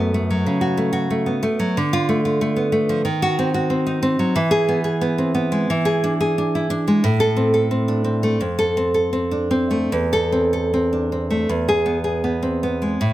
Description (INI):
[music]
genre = romantic piece for solo classical guitar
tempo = 73-94 BPM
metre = 4/4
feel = rubato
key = unclear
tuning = A4 = 440 Hz
[part]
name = nylon-string guitar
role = solo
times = 0.0-13.1 s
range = E2 to A4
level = -17 LUFS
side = equal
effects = none
[sound]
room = light reverb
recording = close, detailed microphones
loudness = -17 LUFS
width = side -14 dB against mid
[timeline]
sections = 0.0-13.0 A section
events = none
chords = 0.0 F#m; 1.8 Dm; 3.1 D#m6; 4.4 E; 5.7 E7; 7.0 Am; 8.4 F; 9.9 Am/E; 11.5 E